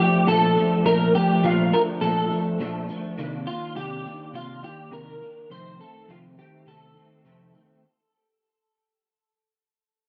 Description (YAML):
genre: indie pop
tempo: 103 BPM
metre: 4/4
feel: swing 55% on 16ths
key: Bb major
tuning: A4 = 439 Hz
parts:
  - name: electric guitar through a small old amp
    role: melody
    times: 0.0-7.5 s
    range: F4 to C5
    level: -26 LUFS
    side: equal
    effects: ensemble chorus
  - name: electric guitar through a small old amp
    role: accompaniment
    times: 0.0-7.8 s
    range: F2 to D4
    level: -26 LUFS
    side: equal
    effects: ensemble chorus, vibrato effect
room: light reverb, digital ambience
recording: cassette tape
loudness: -22 LUFS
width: mono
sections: 0.0-7.8 A section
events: fade-out 0.0-7.8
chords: 0.0 Bbmaj7; 3.2 Cm9; 5.5 F7